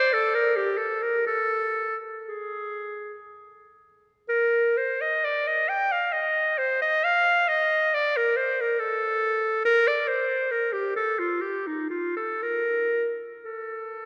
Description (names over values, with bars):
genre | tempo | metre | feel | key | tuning
classical, free, expressive piece for unaccompanied clarinet | 55-72 BPM | 3/4 | rubato | unclear | A4 = 442 Hz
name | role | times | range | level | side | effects
bright clarinet | solo | 0.0-14.1 s | Eb4 to G5 | -25 LUFS | equal | none
room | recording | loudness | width
wet church reverb, RT60 3.2 s | none | -25 LUFS | mono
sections
0.0-14.1 A section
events
none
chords
none